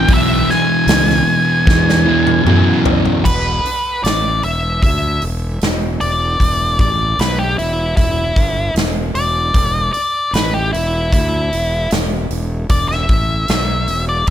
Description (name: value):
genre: blues rock power trio and southern rock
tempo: 76 BPM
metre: 4/4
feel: straight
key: E mixolydian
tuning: A4 = 438 Hz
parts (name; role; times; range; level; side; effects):
- octave-fuzz lead guitar; melody; 0.0-14.3 s; E4 to G#5; -18 LUFS; left 1 dB; distortion
- fuzz guitar; riff; 0.0-3.2 s; E2 to E3; -15 LUFS; equal; distortion
- fuzz fingered electric bass; bass; 0.0-14.3 s; E1 to F#2; -19 LUFS; equal; overdrive
- big rock drum kit; drums; 0.1-14.3 s; crash cymbal, hi-hat, kick drum, snare drum, toms; -18 LUFS; equal; none
room: small room ambience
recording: none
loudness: -13 LUFS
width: side -11 dB against mid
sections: 0.0-3.2 A section; 3.2-14.3 B section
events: lead electric guitar solo 0.0-3.2; drum fill 1.7-3.2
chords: 0.0 E; 3.2 E5